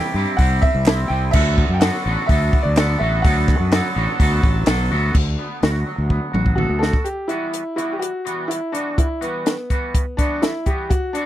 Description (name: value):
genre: indie rock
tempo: 126 BPM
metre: 4/4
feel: straight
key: E minor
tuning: A4 = 439 Hz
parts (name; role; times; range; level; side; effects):
- bright upright piano; melody; 0.0-11.3 s; B3 to G5; -25 LUFS; equal; none
- twangy electric guitar; riff; 0.0-11.3 s; C3 to A4; -24 LUFS; right 1 dB; double-tracked left and right
- fuzz fingered electric bass; bass; 0.1-6.9 s; A1 to G2; -20 LUFS; equal; overdrive
- compact cocktail drum kit; drums; 0.4-11.3 s; crash cymbal, hi-hat, kick drum, snare drum, toms; -18 LUFS; equal; none
- group handclap; percussion; 0.9-4.8 s; none; -32 LUFS; right 7 dB; none
room: little or no reverb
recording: dry, close 1970s-style studio recording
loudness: -17 LUFS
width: side -13 dB against mid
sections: 0.0-5.1 A section; 5.1-7.1 B section; 7.1-11.3 C section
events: drum fill 6.1-7.1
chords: 0.0 C; 1.3 D6; 7.1 Emadd9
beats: 0.39 0.86 | 1.34 1.81 2.29 2.76 | 3.24 3.72 4.19 4.67 | 5.15 5.62 6.10 6.58 | 7.06 7.54 8.02 8.50 | 8.98 9.46 9.94 10.42 | 10.90